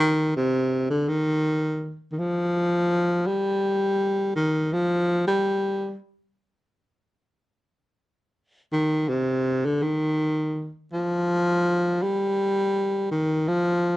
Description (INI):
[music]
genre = jazz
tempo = free time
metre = none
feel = none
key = unclear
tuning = A4 = 439 Hz
[part]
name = dark baritone saxophone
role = solo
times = 0.0-14.0 s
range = C3 to G3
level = -22 LUFS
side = equal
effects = none
[sound]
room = light reverb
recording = dark, warm production, lossy compression artefacts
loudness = -22 LUFS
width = side -17 dB against mid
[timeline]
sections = 0.0-14.0 A section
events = none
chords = none